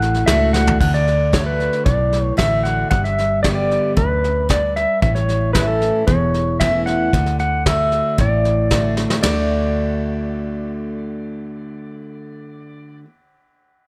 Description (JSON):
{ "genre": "honky-tonk and classic country", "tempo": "114 BPM", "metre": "4/4", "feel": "straight", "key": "D major", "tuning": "A4 = 442 Hz", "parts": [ { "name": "pedal steel guitar", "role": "melody", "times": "0.0-13.0 s", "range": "A4 to F#5", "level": "-22 LUFS", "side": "equal", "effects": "none" }, { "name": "picked steel-string acoustic guitar", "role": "accompaniment", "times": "0.0-13.1 s", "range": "E2 to G4", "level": "-25 LUFS", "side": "equal", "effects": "none" }, { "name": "pedal steel guitar", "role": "sustained chords", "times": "0.0-0.8 s", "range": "A4 to F#5", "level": "-42 LUFS", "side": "equal", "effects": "none" }, { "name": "vintage muted fingered electric bass", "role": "bass", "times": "0.0-13.0 s", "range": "E1 to D2", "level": "-24 LUFS", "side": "equal", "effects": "none" }, { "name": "soft brush drum kit", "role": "drums", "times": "0.0-9.4 s", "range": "crash cymbal, hi-hat, kick drum, ride cymbal, snare drum, toms", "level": "-23 LUFS", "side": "equal", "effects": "none" } ], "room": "light reverb", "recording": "none", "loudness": "-18 LUFS", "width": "mono", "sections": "0.8-9.2 A section; 9.2-13.4 B section", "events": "drum fill 0.5, 9.0", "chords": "0.0 D; 2.9 G; 5.0 A; 7.1 D" }